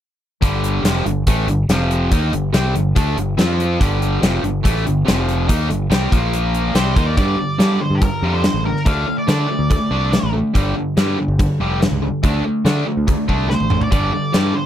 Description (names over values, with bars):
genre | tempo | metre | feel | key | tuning
classic rock | 142 BPM | 4/4 | straight | G minor | A4 = 437 Hz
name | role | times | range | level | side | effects
distorted electric guitar | riff | 0.4-14.7 s | F2 to F4 | -20 LUFS | equal | overdrive
growling fingered electric bass | bass | 0.4-14.5 s | F1 to G3 | -20 LUFS | equal | overdrive
gated 80s drum kit | drums | 0.4-14.4 s | hi-hat, kick drum, snare drum, toms | -19 LUFS | equal | none
octave-fuzz lead guitar | melody | 6.8-10.3, 13.5-14.7 s | G4 to F5 | -24 LUFS | right 1 dB | distortion
room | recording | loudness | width
little or no reverb | none | -15 LUFS | side -11 dB against mid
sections
0.4-7.2 A section; 7.2-14.7 B section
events
drum fill 13.5-13.9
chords
0.4 G5; 1.7 F5; 2.1 Gm; 3.4 F5; 3.8 G5; 5.1 F5; 5.5 Gm; 6.1 Bb5; 6.8 Gm; 7.2 G5; 8.9 D5; 10.6 G5; 12.2 D5; 13.9 G5